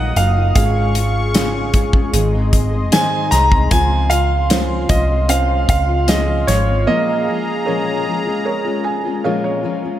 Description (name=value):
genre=pop ballad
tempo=76 BPM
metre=4/4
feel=straight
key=Db major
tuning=A4 = 441 Hz
part: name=bright concert grand piano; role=melody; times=0.0-9.2 s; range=Db5 to Bb5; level=-19 LUFS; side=right 2 dB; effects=diffuse ambient delay
part: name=felt-muted upright piano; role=accompaniment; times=0.0-10.0 s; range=F3 to Ab5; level=-24 LUFS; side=right 4 dB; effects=none
part: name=warm analog pad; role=sustained chords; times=0.0-10.0 s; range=Gb3 to Eb6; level=-25 LUFS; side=left 1 dB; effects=chorus
part: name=fingerpicked steel-string acoustic guitar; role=arpeggios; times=0.0-10.0 s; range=Ab2 to Ab4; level=-24 LUFS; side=left 6 dB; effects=diffuse ambient delay
part: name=vintage muted fingered electric bass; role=bass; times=0.0-6.8 s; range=Gb1 to Db2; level=-17 LUFS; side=equal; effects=none
part: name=natural country drum kit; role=drums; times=0.2-6.7 s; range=hi-hat, kick drum, snare drum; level=-17 LUFS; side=equal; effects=none
room=moderate plate reverb, RT60 2.8 s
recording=dreamy mix soaked in reverb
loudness=-14 LUFS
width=side -12 dB against mid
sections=0.0-10.0 A section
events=felt piano fill 8.5-10.0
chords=0.0 Ebmadd9; 0.6 Db/Ab; 2.1 Ab; 3.7 Dbmaj7; 6.9 Bbm7